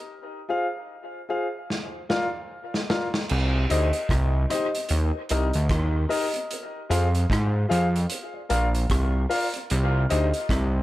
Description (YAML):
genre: dub reggae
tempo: 75 BPM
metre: 4/4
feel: swing 60% on 16ths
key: C minor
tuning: A4 = 442 Hz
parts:
  - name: dark baby grand piano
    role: stabs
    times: 0.5-10.3 s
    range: Eb4 to F5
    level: -28 LUFS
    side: left 2 dB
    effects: dub echo
  - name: vintage drum kit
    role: drums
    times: 1.7-10.7 s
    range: crash cymbal, hi-hat, kick drum, rim click, snare drum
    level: -29 LUFS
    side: equal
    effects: none
  - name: fat analog bass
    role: bass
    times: 3.3-10.8 s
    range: Bb1 to Ab2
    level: -22 LUFS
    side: equal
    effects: none
room: moderate spring reverb, RT60 2.0 s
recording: echo-heavy mix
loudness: -22 LUFS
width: side -16 dB against mid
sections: 0.0-3.3 A section; 3.3-10.8 B section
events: break 0.1-3.3; drum fill 1.7-3.3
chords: 0.1 Fm; 1.7 Bb; 3.3 Cm; 4.9 Eb; 6.5 Fm; 8.1 Bb; 9.7 Cm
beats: | 0.08 0.88 1.69 2.49 | 3.29 4.09 4.89 5.70 | 6.50 7.30 8.10 8.90 | 9.70 10.50